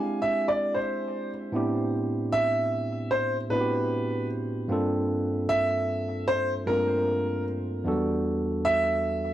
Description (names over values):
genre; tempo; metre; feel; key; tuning
R&B; 76 BPM; 4/4; straight; unclear; A4 = 440 Hz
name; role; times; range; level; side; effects
clear concert grand piano; melody; 0.0-9.3 s; Bb4 to G#5; -26 LUFS; equal; analog delay
tine electric piano; accompaniment; 0.0-9.3 s; E2 to Bb4; -28 LUFS; right 1 dB; none
room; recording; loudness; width
small room ambience; dry, gritty hardware recording; -24 LUFS; side -12 dB against mid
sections
0.0-1.5 A section; 1.5-9.3 B section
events
none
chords
0.0 E7alt; 1.5 Am11; 4.7 Gm11; 7.9 Em11